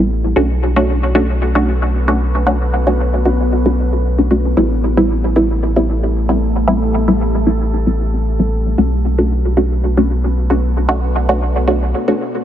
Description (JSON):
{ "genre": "dub techno", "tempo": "114 BPM", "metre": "4/4", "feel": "swing 53% on 16ths", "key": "unclear", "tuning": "A4 = 440 Hz", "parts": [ { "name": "deep dark ambient pad", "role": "sustained chords", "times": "0.1-12.4 s", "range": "A3 to B4", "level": "-23 LUFS", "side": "left 1 dB", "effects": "chorus, built-in reverb" }, { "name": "filtered dub chord stab", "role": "stabs", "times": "0.0-12.2 s", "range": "G3 to F#4", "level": "-16 LUFS", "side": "equal", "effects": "chorus, phaser, dub echo" }, { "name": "soft dub sub bass", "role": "bass", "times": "0.0-11.9 s", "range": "A1 to B1", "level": "-16 LUFS", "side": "equal", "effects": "none" } ], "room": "light reverb, digital ambience", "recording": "none", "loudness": "-13 LUFS", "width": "side -10 dB against mid", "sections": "0.0-12.4 A section", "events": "filter sweep on synth stab 0.0-12.4; break 11.9-12.4", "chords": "0.4 Bm7; 4.6 Am7; 8.8 Bm7" }